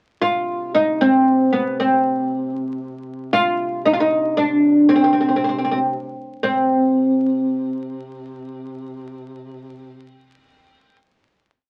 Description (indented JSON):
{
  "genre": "arabic",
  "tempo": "116 BPM",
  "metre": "3/4",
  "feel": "straight",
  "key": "C minor",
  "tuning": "A4 = 440 Hz",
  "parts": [
    { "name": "oud", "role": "melody", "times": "0.2-11.0 s", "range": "B3 to F4", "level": "-19 LUFS", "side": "equal", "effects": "none" },
    { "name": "mellow duduk", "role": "drone", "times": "0.2-10.3 s", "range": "C3", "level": "-38 LUFS", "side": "equal", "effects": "none" }
  ],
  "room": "wet small room reverb, RT60 0.5 s",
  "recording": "very old 78 rpm record, vinyl crackle",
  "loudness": "-18 LUFS",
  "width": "mono",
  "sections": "0.2-6.4 A section; 6.4-9.5 final note",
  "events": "none",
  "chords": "none",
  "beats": "| 0.23 0.75 1.26 | 1.78 2.30 2.81 | 3.33 3.85 4.36 | 4.88 5.39 5.91 | 6.42 6.94 7.45 | 7.97 8.48 9.00"
}